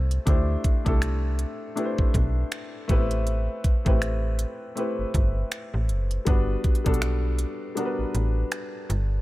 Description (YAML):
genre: contemporary R&B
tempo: 80 BPM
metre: 4/4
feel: swing 58% on 16ths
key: A dorian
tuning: A4 = 440 Hz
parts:
  - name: warm baby grand piano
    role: accompaniment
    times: 0.0-9.2 s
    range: G3 to C5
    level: -29 LUFS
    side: left 2 dB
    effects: none
  - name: slap-like FM bass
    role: bass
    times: 0.0-9.2 s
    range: F#1 to D2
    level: -25 LUFS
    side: equal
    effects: none
  - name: trap drum kit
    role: drums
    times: 0.1-9.1 s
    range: finger snaps, hi-hat, kick drum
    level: -24 LUFS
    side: equal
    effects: none
room: little or no reverb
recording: none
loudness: -23 LUFS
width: side -18 dB against mid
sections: 0.0-9.2 A section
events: break 7.8-9.2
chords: 0.3 D9sus4; 2.9 Am9; 6.3 Gmaj7